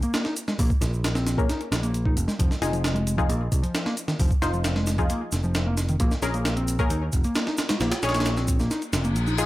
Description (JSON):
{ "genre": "breakbeat, breaks", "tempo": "133 BPM", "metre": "4/4", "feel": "straight", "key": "unclear", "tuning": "A4 = 440 Hz", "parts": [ { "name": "overdriven picked electric bass", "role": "riff", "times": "0.0-9.3 s", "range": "Eb3 to Eb4", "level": "-29 LUFS", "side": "equal", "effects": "tape echo" }, { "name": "breakbeat sampler-style drum kit", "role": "drums", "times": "0.0-9.5 s", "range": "hi-hat, kick drum, snare drum", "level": "-25 LUFS", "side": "equal", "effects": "none" }, { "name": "shaker", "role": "drums", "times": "0.0-9.5 s", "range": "none", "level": "-38 LUFS", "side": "right 1 dB", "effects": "overdrive" }, { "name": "picked electric bass", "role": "bass", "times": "0.6-9.5 s", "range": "F1 to Eb2", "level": "-26 LUFS", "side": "equal", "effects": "none" }, { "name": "filtered dub chord stab", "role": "stabs", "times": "1.4-9.5 s", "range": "Db4 to Db5", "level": "-29 LUFS", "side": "left 3 dB", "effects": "chorus, tape echo" }, { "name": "reverse cymbal", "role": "sound effects", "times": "8.9-9.5 s", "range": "none", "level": "-33 LUFS", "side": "left 5 dB", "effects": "none" } ], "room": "little or no reverb", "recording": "none", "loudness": "-22 LUFS", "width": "side -16 dB against mid", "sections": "0.0-9.5 A section", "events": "kick drops out 8.7-9.5; reverse cymbal 8.9-9.5", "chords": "0.0 Bbm7; 2.4 Fm7; 6.0 Bbm7" }